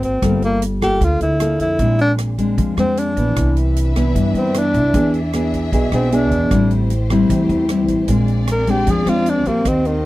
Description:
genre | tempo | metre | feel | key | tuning
bossa nova | 153 BPM | 4/4 | straight | unclear | A4 = 435 Hz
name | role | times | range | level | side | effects
breathy tenor saxophone | melody | 0.0-10.1 s | Eb3 to Bb4 | -19 LUFS | equal | none
nylon-string guitar | accompaniment | 0.0-10.1 s | G2 to A4 | -18 LUFS | left 1 dB | none
upright bass | bass | 0.0-10.1 s | G1 to G2 | -20 LUFS | right 1 dB | none
swinging big-band drum kit | drums | 0.0-9.9 s | hi-hat, kick drum, rim click | -25 LUFS | right 1 dB | none
warm symphonic string section | sustained chords | 3.4-10.1 s | A3 to E5 | -27 LUFS | equal | none
room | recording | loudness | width
little or no reverb | dry, close 1970s-style studio recording | -14 LUFS | side -17 dB against mid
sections
0.0-10.1 A section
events
tenor saxophone solo 0.0-10.1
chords
0.2 Gm9; 1.8 Bb9; 3.4 Cmaj9; 4.9 E7; 6.5 Am7; 8.1 Bb9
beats
| 0.22 0.61 1.01 1.40 | 1.79 2.19 2.58 2.98 | 3.37 3.76 4.16 4.55 | 4.94 5.33 5.73 6.12 | 6.51 6.91 7.30 7.69 | 8.09 8.48 8.87 9.26 | 9.66 10.05

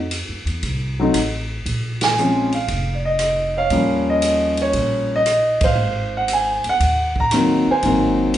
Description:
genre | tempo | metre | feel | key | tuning
jazz piano trio | 117 BPM | 4/4 | swing 69% on 8ths | Ab mixolydian | A4 = 440 Hz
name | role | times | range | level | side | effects
upright bass | bass | 0.0-8.4 s | F1 to Gb2 | -26 LUFS | equal | none
swinging big-band drum kit | drums | 0.1-8.4 s | hi-hat, kick drum, ride cymbal, rim click, snare drum | -25 LUFS | right 1 dB | none
warm concert grand piano | melody | 1.0-8.4 s | Eb3 to Bb5 | -17 LUFS | equal | none
room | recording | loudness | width
wet large studio reverb, RT60 0.8 s | band playing live in one room, nothing above 10.4 kHz | -16 LUFS | side -12 dB against mid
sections
0.0-8.4 A section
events
band accent 1.9, 5.5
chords
0.0 F(b9); 1.7 Bbm7; 3.7 Eb7; 5.8 Ab7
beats
0.12 0.64 1.15 | 1.66 2.18 2.69 3.21 | 3.72 4.23 4.75 5.26 | 5.78 6.29 6.80 7.32 | 7.83 8.35

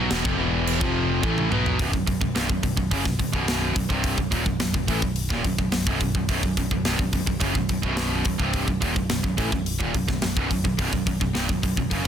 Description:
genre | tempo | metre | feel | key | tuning
heavy metal | 107 BPM | 4/4 | straight | B phrygian dominant | A4 = 440 Hz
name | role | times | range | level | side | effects
distorted electric guitar | riff | 0.0-12.1 s | B1 to B3 | -29 LUFS | left 12 dB | distortion
overdriven electric guitar | riff | 0.0-1.8 s | E2 to B3 | -28 LUFS | left 2 dB | none
tight distorted guitar | riff | 0.0-12.0 s | B1 to B3 | -27 LUFS | right 10 dB | distortion
modern bright picked electric bass | bass | 0.0-12.1 s | B0 to B1 | -29 LUFS | equal | none
tight metal drum kit | drums | 0.1-12.1 s | crash cymbal, hi-hat, kick drum, snare drum, toms | -26 LUFS | equal | none
room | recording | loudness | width
little or no reverb | dense, heavily limited modern master | -21 LUFS | side -9 dB against mid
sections
0.0-1.8 A section; 1.8-12.1 B section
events
drum fill 1.2-1.8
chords
0.0 E5; 1.8 B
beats
0.11 0.67 1.23 | 1.79 2.35 2.92 3.48 | 4.04 4.60 5.17 5.73 | 6.29 6.85 7.41 7.98 | 8.54 9.10 9.66 10.22 | 10.79 11.35 11.91

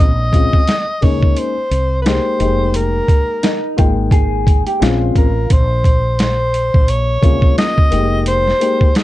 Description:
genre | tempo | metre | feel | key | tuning
hip hop, jazz-hop | 87 BPM | 4/4 | swing 59% on 16ths | Bb dorian | A4 = 441 Hz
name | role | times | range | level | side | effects
breathy alto saxophone | melody | 0.0-9.0 s | Ab4 to Eb5 | -18 LUFS | equal | none
dark concert grand piano | accompaniment | 0.0-8.9 s | Ab3 to G5 | -20 LUFS | left 5 dB | none
woody fretless electric bass | bass | 0.0-8.5 s | F1 to Db2 | -18 LUFS | equal | none
boom bap sampler-style drum kit | drums | 0.3-9.0 s | hi-hat, kick drum, snare drum | -13 LUFS | equal | vintage 12-bit sampler grit
mellow electric guitar | second line | 3.4-5.5 s | Eb4 to Ab4 | -20 LUFS | right 1 dB | lush chorus
room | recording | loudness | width
light reverb | dark, warm production | -12 LUFS | side -16 dB against mid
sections
0.0-5.5 A section; 5.5-9.0 B section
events
none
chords
0.0 Bbm9; 2.4 Fm11; 4.8 Bbm9; 7.9 Fm11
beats
0.68 1.36 2.05 | 2.74 3.43 4.12 4.81 | 5.50 6.19 6.88 7.57 | 8.26 8.95

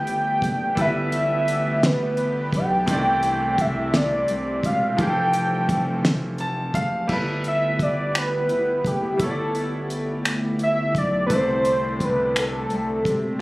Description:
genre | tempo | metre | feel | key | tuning
slow six-eight R&B | 57 BPM (dotted quarters) | 6/8 | straight | G mixolydian | A4 = 440 Hz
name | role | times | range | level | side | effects
warm velvety synth lead | melody | 0.0-13.4 s | G4 to G5 | -22 LUFS | equal | chorus, tape echo
clear baby grand piano | accompaniment | 0.0-13.4 s | C3 to A5 | -28 LUFS | equal | none
lush unison pad | sustained chords | 0.0-13.4 s | D3 to G4 | -30 LUFS | equal | chorus
round analog bass | bass | 0.0-13.4 s | E1 to C2 | -29 LUFS | equal | none
cloth-damped thuddy drum kit | drums | 0.1-13.2 s | crash cymbal, finger snaps, hi-hat, kick drum, snare drum | -24 LUFS | equal | none
room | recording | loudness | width
light reverb | recorded on a phone in the room, studio reverb | -20 LUFS | side -20 dB against mid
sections
0.0-7.1 A section; 7.1-13.4 B section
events
grand piano fill 6.0-7.1; soft synth lead solo 7.1-13.4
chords
0.0 G69; 2.9 C69; 5.0 Fmaj9; 7.1 G69; 11.3 C69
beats
| 0.77 1.82 | 2.88 3.93 | 4.98 6.04 | 7.09 8.14 | 9.19 10.25 | 11.30 12.35 | 13.40

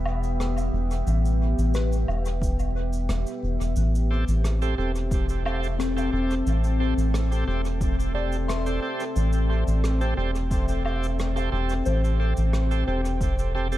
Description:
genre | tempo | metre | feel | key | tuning
ambient dub | 89 BPM | 4/4 | straight | unclear | A4 = 441 Hz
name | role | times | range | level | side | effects
deep dark ambient pad | sustained chords | 0.0-13.8 s | B3 to G5 | -30 LUFS | left 1 dB | chorus, built-in reverb
soft synth bell | arpeggios | 0.0-13.8 s | C4 to C6 | -36 LUFS | left 5 dB | chorus, phaser, tape echo
round analog bass | bass | 0.0-13.8 s | E1 to A1 | -24 LUFS | equal | none
woodblock, cabasa and rim click | drums | 0.1-13.8 s | none | -37 LUFS | right 1 dB | dub echo
electronic kick drum | drums | 2.4-13.3 s | none | -27 LUFS | equal | none
bright tonewheel organ | stabs | 4.1-13.8 s | C4 to A4 | -32 LUFS | right 4 dB | overdrive, slow rotary speaker, dub echo
room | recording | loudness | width
light reverb, small room ambience | vinyl crackle | -22 LUFS | side -14 dB against mid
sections
0.0-13.8 A section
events
none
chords
0.0 Em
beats
0.40 | 1.07 1.74 2.42 3.09 | 3.77 4.44 5.12 5.79 | 6.46 7.14 7.81 8.49 | 9.16 9.83 10.51 11.18 | 11.86 12.53 13.21

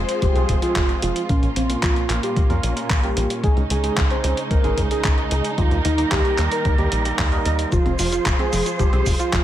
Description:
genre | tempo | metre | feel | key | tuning
italo disco | 112 BPM | 4/4 | straight | F minor | A4 = 441 Hz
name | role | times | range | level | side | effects
soft octave-layered synth lead | melody | 0.0-9.4 s | C4 to Eb5 | -25 LUFS | right 1 dB | chorus, digital delay
dark studio string section | sustained chords | 0.0-9.4 s | Eb3 to C5 | -27 LUFS | right 1 dB | none
overdriven tine electric piano | stabs | 0.0-7.7 s | Bb2 to Bb4 | -29 LUFS | right 4 dB | fast tremolo, tape echo
tight sequencer bass | bass | 0.0-9.4 s | F1 to F2 | -24 LUFS | equal | none
dusty soul sampler-style drum kit | drums | 0.1-9.4 s | cabasa, handclaps, hi-hat | -27 LUFS | equal | gated reverb
electronic kick drum | drums | 0.2-9.4 s | none | -21 LUFS | equal | none
analog pluck | arpeggios | 7.7-9.4 s | F3 to F4 | -29 LUFS | left 2 dB | chorus, cassette tape, tape echo
room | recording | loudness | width
light reverb, digital ambience | none | -18 LUFS | side -12 dB against mid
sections
0.0-9.4 A section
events
none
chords
0.0 Fm; 1.3 Bbm; 3.4 Dbsus2; 5.6 Eb; 7.7 Fm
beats
0.22 0.76 | 1.29 1.83 2.37 2.90 | 3.44 3.97 4.51 5.04 | 5.58 6.12 6.65 7.19 | 7.72 8.26 8.79 9.33

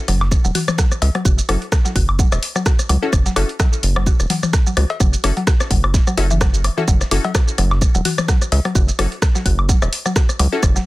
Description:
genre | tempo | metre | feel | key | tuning
minimal techno | 128 BPM | 4/4 | swing 56% on 16ths | F# minor | A4 = 440 Hz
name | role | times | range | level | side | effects
mallet-like synth pluck | riff | 0.1-10.8 s | E3 to F#4 | -25 LUFS | left 1 dB | chorus, vintage 12-bit sampler grit, sidechain pumping, dub echo
rubbery square bass | bass | 0.1-10.8 s | E1 to C#2 | -18 LUFS | equal | tube saturation, sidechain pumping
dusty soul sampler-style drum kit | drums | 0.1-10.9 s | hi-hat, snare drum | -32 LUFS | right 2 dB | sidechain pumping on hats, high-pass filter on hats, studio ambience, high-pass filter on snare
garage drum kit | drums | 0.1-10.8 s | hi-hat, rim click, shaker | -24 LUFS | right 1 dB | soft clipping on snare, studio ambience
booming analog drum machine | percussion | 0.1-10.7 s | cowbell, rim click, toms, woodblock | -24 LUFS | left 3 dB | soft clipping on snare, studio ambience, dub echo
electronic kick drum | drums | 0.3-10.7 s | none | -16 LUFS | equal | studio ambience
wavetable chord stab | stabs | 1.5-10.6 s | C#4 to A4 | -26 LUFS | left 4 dB | dub echo
room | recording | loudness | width
little or no reverb | dense, heavily limited modern master | -14 LUFS | side -19 dB against mid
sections
0.0-10.9 A section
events
none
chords
0.0 F#7(no3)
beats
0.32 0.79 | 1.25 1.72 2.19 2.66 | 3.13 3.60 4.07 4.54 | 5.00 5.47 5.94 6.41 | 6.88 7.35 7.82 8.29 | 8.75 9.22 9.69 10.16 | 10.63

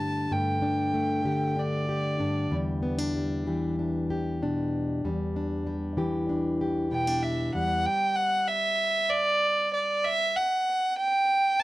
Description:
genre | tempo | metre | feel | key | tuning
folk | 95 BPM | 4/4 | straight | unclear | A4 = 440 Hz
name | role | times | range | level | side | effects
warm fiddle | melody | 0.0-2.5, 6.9-11.6 s | D5 to A5 | -25 LUFS | right 1 dB | none
fingerpicked plugged-in steel-string acoustic guitar | accompaniment | 0.0-10.4 s | E2 to G4 | -28 LUFS | left 1 dB | none
room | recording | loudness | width
light reverb | dry, close 1970s-style studio recording | -25 LUFS | side -17 dB against mid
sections
0.0-7.9 A section; 7.9-11.6 B section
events
none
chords
0.0 Gsus2; 2.5 Em7; 7.9 N.C.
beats
| 0.30 0.94 1.57 2.20 | 2.83 3.46 4.09 4.72 | 5.35 5.98 6.61 7.23 | 7.86 8.48 9.11 9.73 | 10.36 10.98 11.61

